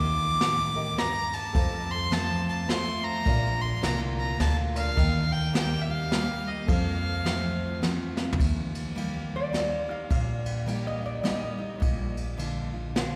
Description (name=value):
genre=honky-tonk and classic country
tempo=105 BPM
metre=3/4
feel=swing 61% on 8ths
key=unclear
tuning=A4 = 440 Hz
part: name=clear fiddle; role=melody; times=0.0-7.8 s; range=Eb5 to D6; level=-32 LUFS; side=equal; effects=none
part: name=picked steel-string acoustic guitar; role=accompaniment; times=0.0-13.2 s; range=F2 to G4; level=-34 LUFS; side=equal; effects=none
part: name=warm baby grand piano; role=accompaniment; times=0.0-8.4 s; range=G4 to G5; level=-43 LUFS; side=equal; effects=none
part: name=upright bass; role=bass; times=0.0-13.1 s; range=Bb1 to F2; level=-34 LUFS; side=equal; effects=none
part: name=vintage brush drum kit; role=drums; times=0.4-13.1 s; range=kick drum, ride cymbal, snare drum, toms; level=-33 LUFS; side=equal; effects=none
part: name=lap resonator guitar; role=second line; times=9.4-11.8 s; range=D5 to F5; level=-36 LUFS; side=equal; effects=none
room=wet cathedral reverb, RT60 4.3 s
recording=recorded in a church or concert hall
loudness=-28 LUFS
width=mono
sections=0.0-8.4 A section; 8.4-13.2 B section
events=drum fill 8.1; resonator guitar played with a steel bar solo 8.4-13.2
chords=0.0 Eb; 1.5 F; 3.3 Bb; 5.0 Eb; 6.7 F; 8.4 Eb; 11.8 Bb